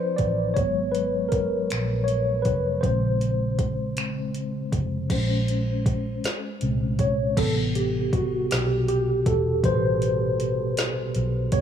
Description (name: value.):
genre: slow six-eight R&B.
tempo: 53 BPM (dotted quarters).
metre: 6/8.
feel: straight.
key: unclear.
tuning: A4 = 440 Hz.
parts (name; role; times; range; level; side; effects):
mellow tine electric piano; accompaniment; 0.0-11.6 s; Bb2 to D5; -24 LUFS; left 1 dB; medium stereo tremolo.
vintage muted fingered electric bass; bass; 0.0-11.6 s; E1 to D2; -27 LUFS; right 1 dB; none.
smooth R&B drum kit; drums; 0.2-11.6 s; crash cymbal, finger snaps, hi-hat, kick drum, snare drum; -27 LUFS; equal; none.
room: light reverb, digital ambience.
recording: small room ambience.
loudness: -22 LUFS.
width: side -9 dB against mid.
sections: 0.0-5.1 A section; 5.1-7.4 B section; 7.4-11.6 C section.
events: tine electric piano solo 0.0-5.1, 5.1-7.4, 7.4-11.6.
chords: 0.0 Dm9; 0.6 G#m9; 2.8 Bbm9; 7.4 Am9.